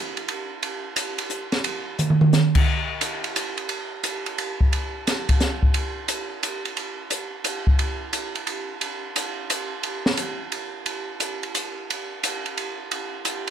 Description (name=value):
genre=jazz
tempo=176 BPM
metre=3/4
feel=swing 65% on 8ths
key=none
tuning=none
part: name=open jazz drum kit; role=drums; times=0.2-13.5 s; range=crash cymbal, hi-hat, kick drum, ride cymbal, snare drum, toms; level=-22 LUFS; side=right 1 dB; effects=none
room=little or no reverb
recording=close, detailed microphones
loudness=-22 LUFS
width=side -9 dB against mid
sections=0.0-10.9 A section; 10.9-13.5 A section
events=drum fill 2.0-2.3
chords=none